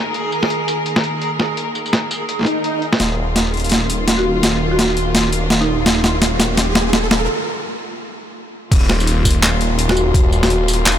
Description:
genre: half-time drum and bass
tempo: 168 BPM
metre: 4/4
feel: swing 59% on 16ths, half-time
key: unclear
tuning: A4 = 440 Hz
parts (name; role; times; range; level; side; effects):
- rich studio string section; sustained chords; 0.0-11.0 s; Eb3 to Bb4; -24 LUFS; left 2 dB; vintage 12-bit sampler grit, sidechain pumping
- backwards swelling texture; texture; 0.0-7.3 s; F4 to Ab4; -27 LUFS; right 2 dB; built-in reverb
- boom bap sampler-style drum kit; drums; 0.1-11.0 s; crash cymbal, handclaps, hi-hat, snare drum, tambourine; -18 LUFS; equal; overdrive, low-pass filter on perc, low-pass filter on snare, low-pass filter on hats, low-pass filter on cymbals, low-pass filter on room
- swell and riser; sound effects; 2.4-7.3 s; none; -25 LUFS; right 1 dB; none
- phased detuned saw bass; bass; 3.0-11.0 s; Eb1; -19 LUFS; equal; phaser
- buzzing marimba with medium mallets; melody; 4.2-6.0, 9.9-10.6 s; Eb4 to Gb4; -23 LUFS; left 1 dB; vintage 12-bit sampler grit, low-pass filter, dub echo
- electronic kick drum; drums; 8.7-10.2 s; none; -14 LUFS; equal; overdrive
room: light reverb, digital ambience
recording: none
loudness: -14 LUFS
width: side -10 dB against mid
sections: 0.0-3.0 A section; 3.0-8.7 B section; 8.7-11.0 C section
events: swell 2.4-3.0; build-up 3.0-8.7; drum fill 3.0-7.3; riser 3.0-7.3; filter sweep on marimba 3.0-8.7; break 7.3-8.7; drop 8.7-11.0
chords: 0.0 Eb5

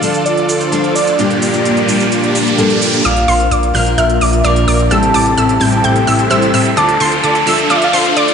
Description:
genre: EDM, festival progressive house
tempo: 129 BPM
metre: 4/4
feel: straight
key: D minor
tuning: A4 = 441 Hz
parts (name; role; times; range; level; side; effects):
- soft struck synth lead; melody; 0.0-8.3 s; A4 to A5; -17 LUFS; equal; chorus, ping-pong delay
- picked steel-string acoustic guitar; accompaniment; 0.0-8.3 s; G2 to Bb4; -18 LUFS; left 3 dB; none
- lush unison pad; sustained chords; 0.0-8.3 s; D3 to D5; -21 LUFS; equal; chorus, phaser
- dense compressed supersaw; riff; 0.0-8.3 s; Bb3 to G5; -17 LUFS; right 1 dB; cassette tape, low-pass filter
- electronic hi-hat and shaker; drums; 0.0-8.3 s; none; -23 LUFS; right 4 dB; none
- riser; sound effects; 0.4-8.3 s; none; -20 LUFS; right 1 dB; none
- wide unison pluck; arpeggios; 3.0-8.3 s; C6 to G6; -17 LUFS; right 1 dB; ping-pong delay
- fat analog bass; bass; 3.0-8.3 s; A1 to A2; -18 LUFS; right 1 dB; none
room: moderate concert hall reverb, RT60 2.0 s, digital ambience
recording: played on a big sound system in a bare room, stone room reverb, high-pass filter, nothing above 10.7 kHz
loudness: -10 LUFS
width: side -7 dB against mid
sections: 0.0-3.0 A section; 3.0-8.3 B section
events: filter sweep on supersaw synth 0.0-3.0, 3.0-8.3; riser 0.4-3.0, 3.0-8.3; build-up 3.0-8.3; filter sweep on analog synth pad 3.0-8.3; filter sweep 3.0-8.3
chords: 0.0 Dm; 1.2 Gm7; 3.0 Bb; 4.9 Am7; 6.8 Dm

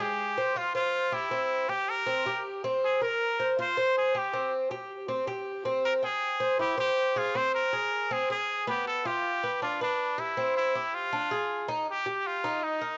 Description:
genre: latin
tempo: 159 BPM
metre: 4/4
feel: straight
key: unclear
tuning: A4 = 441 Hz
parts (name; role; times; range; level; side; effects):
- trumpet with straight mute; melody; 0.0-13.0 s; D4 to C5; -32 LUFS; equal; cassette tape
- Cuban tres; arpeggios; 0.0-13.0 s; Ab3 to G5; -32 LUFS; equal; none
room: moderate lush hall reverb, RT60 2.2 s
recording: home recording on cassette, nothing above 7.6 kHz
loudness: -29 LUFS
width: mono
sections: 0.0-11.9 A section; 11.9-13.0 B section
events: none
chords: 0.0 Fm; 1.3 C; 2.8 Bbsus2; 4.3 C5; 7.3 Abadd9; 8.9 G7; 10.4 C; 11.1 Ddim; 11.9 Eb

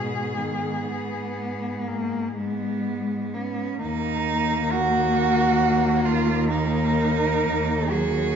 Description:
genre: classical, lyrical piece for cello ensemble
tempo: 40-46 BPM (dotted quarters)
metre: 12/8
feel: rubato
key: G# minor, Eb minor from 3.8 s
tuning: A4 = 438 Hz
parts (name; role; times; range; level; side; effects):
- rich cello; melody; 0.0-8.4 s; Gb4 to Bb4; -30 LUFS; left 4 dB; none
- rich cello; second line; 0.0-8.4 s; B3 to Ab4; -25 LUFS; right 5 dB; none
- rich cello; accompaniment; 0.0-8.4 s; B2 to B3; -27 LUFS; left 5 dB; none
- rich cello; bass; 0.0-8.4 s; Eb2 to G#2; -27 LUFS; right 2 dB; none
room: wet recital hall reverb, RT60 1.6 s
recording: dark, warm production, nothing above 7.4 kHz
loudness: -21 LUFS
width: side -7 dB against mid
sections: 0.0-3.8 A section; 3.8-8.4 B section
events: none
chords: 0.0 G#m; 3.8 Ebm

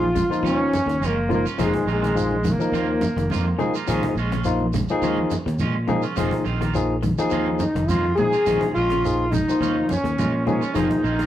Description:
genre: afrobeat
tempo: 105 BPM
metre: 4/4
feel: swing 53% on 16ths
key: Bb minor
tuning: A4 = 440 Hz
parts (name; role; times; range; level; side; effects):
- trombone with bucket mute; melody; 0.0-3.6, 7.6-11.3 s; Ab3 to Ab4; -23 LUFS; equal; none
- warm trumpet; second line; 0.0-3.6, 7.6-11.3 s; Ab3 to Ab4; -29 LUFS; right 1 dB; none
- barky tine electric piano; accompaniment; 0.0-11.0 s; F3 to Bb4; -24 LUFS; left 2 dB; overdrive
- fingered electric bass; bass; 0.0-11.3 s; F1 to Bb2; -26 LUFS; equal; none
- congas; percussion; 0.0-11.0 s; none; -28 LUFS; right 1 dB; none
- electric guitar at the edge of break-up; arpeggios; 0.2-10.9 s; Bb2 to F3; -30 LUFS; left 3 dB; none
- electric guitar at the edge of break-up; stabs; 0.2-11.3 s; Eb3 to F4; -31 LUFS; right 6 dB; spring reverb
- cajon; drums; 0.2-11.3 s; none; -35 LUFS; equal; none
- shekere; percussion; 0.2-11.3 s; none; -33 LUFS; right 3 dB; none
room: wet studio reverb, RT60 0.5 s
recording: rough rehearsal-room recording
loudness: -19 LUFS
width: side -12 dB against mid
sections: 0.0-11.3 A section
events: none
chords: 0.0 Bbm7; 1.6 F7sus4; 3.9 Bbm7; 6.2 F7sus4; 8.5 Bbm7; 10.8 F7sus4

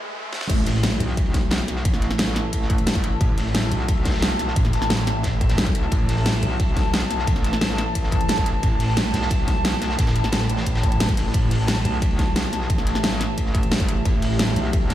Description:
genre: dark technical drum and bass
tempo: 177 BPM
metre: 4/4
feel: straight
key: unclear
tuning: A4 = 443 Hz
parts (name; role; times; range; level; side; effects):
- deep dark ambient pad; sustained chords; 0.0-14.9 s; E3 to A5; -29 LUFS; right 1 dB; chorus, built-in reverb, sidechain pumping
- riser; sound effects; 0.0-0.5 s; none; -31 LUFS; equal; none
- dubstep drum kit; drums; 0.3-14.9 s; crash cymbal, hi-hat, snare drum; -25 LUFS; equal; none
- snarling distorted saw bass; bass; 0.5-1.0, 3.2-6.4, 8.6-11.8, 14.1-14.6 s; A1; -22 LUFS; equal; distortion, overdrive, sidechain pumping
- crunchy breakbeat drum kit; drums; 0.5-14.9 s; hi-hat, ride cymbal, snare drum; -34 LUFS; equal; high-pass filter on cymbals, high-pass filter on hats, high-pass filter on snare, high-pass filter on room
- electronic kick drum; drums; 0.5-14.9 s; none; -22 LUFS; equal; high-pass filter on kick, high-pass filter on room
- warbly tape-like pad; texture; 2.1-14.9 s; A5; -30 LUFS; left 1 dB; chorus, built-in reverb, phaser, sidechain pumping
- metallic wobble bass; bass; 1.0-14.9 s; A1 to B1; -24 LUFS; equal; distortion, chorus
room: light reverb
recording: played on a big sound system in a bare room, stone room reverb, high-pass filter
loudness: -19 LUFS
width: side -12 dB against mid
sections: 0.5-14.9 A section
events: break 0.0-0.5; riser 0.0-0.5; drum fill 0.3; drop 0.5-14.9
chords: 0.5 A5

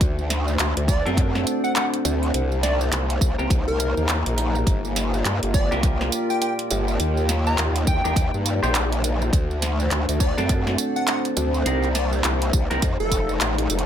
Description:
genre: glitch hop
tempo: 103 BPM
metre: 4/4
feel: swing 60% on 16ths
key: unclear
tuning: A4 = 439 Hz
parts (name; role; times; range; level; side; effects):
- dark analog pad; sustained chords; 0.0-13.9 s; A3 to D5; -31 LUFS; left 1 dB; wide subtle chorus, sidechain pumping
- growl bass; bass; 0.0-13.8 s; F1 to G2; -23 LUFS; equal; chorus
- electronic kick drum; drums; 0.0-13.3 s; none; -22 LUFS; equal; none
- pop drum kit; drums; 0.0-13.9 s; handclaps, hi-hat, snare drum, tambourine; -26 LUFS; right 1 dB; none
- warbly tape-like pad; texture; 0.0-13.9 s; D4 to Bb5; -31 LUFS; left 2 dB; chorus, built-in reverb, sidechain pumping
- plucky unison lead; melody; 0.9-13.4 s; A4 to Bb5; -29 LUFS; equal; digital delay
- clean electric guitar; stabs; 1.1-12.8 s; C4 to C5; -28 LUFS; right 3 dB; sidechain pumping, digital delay
room: little or no reverb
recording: none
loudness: -19 LUFS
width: side -9 dB against mid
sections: 0.0-13.9 A section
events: drum fill 13.7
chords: 0.0 D7; 2.3 Cm7; 4.7 Gm7; 7.0 Ebmaj7; 9.3 D7; 11.7 Cm7; 12.8 F13

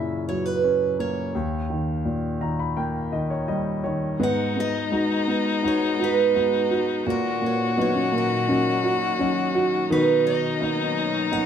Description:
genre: acoustic folk-pop ballad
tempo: 84 BPM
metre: 4/4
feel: straight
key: G# minor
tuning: A4 = 439 Hz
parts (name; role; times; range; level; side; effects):
- picked steel-string acoustic guitar; melody; 0.0-11.5 s; A#4 to F#5; -26 LUFS; right 6 dB; none
- warm grand piano; accompaniment; 0.0-11.5 s; D#2 to B5; -26 LUFS; left 1 dB; none
- rich violin; second line; 4.2-11.5 s; D#4 to F#4; -26 LUFS; left 6 dB; none
- warm chamber string section; sustained chords; 4.2-11.5 s; G#2 to A#5; -31 LUFS; equal; none
- felt-muted upright piano; arpeggios; 4.2-11.5 s; D#3 to F#4; -26 LUFS; right 1 dB; none
room: light reverb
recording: none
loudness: -21 LUFS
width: side -8 dB against mid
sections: 0.0-4.2 A section; 4.2-11.5 B section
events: none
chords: 0.0 F#7; 1.3 D#7; 4.2 G#m7; 7.1 D#m7/A#; 9.9 Bmaj7

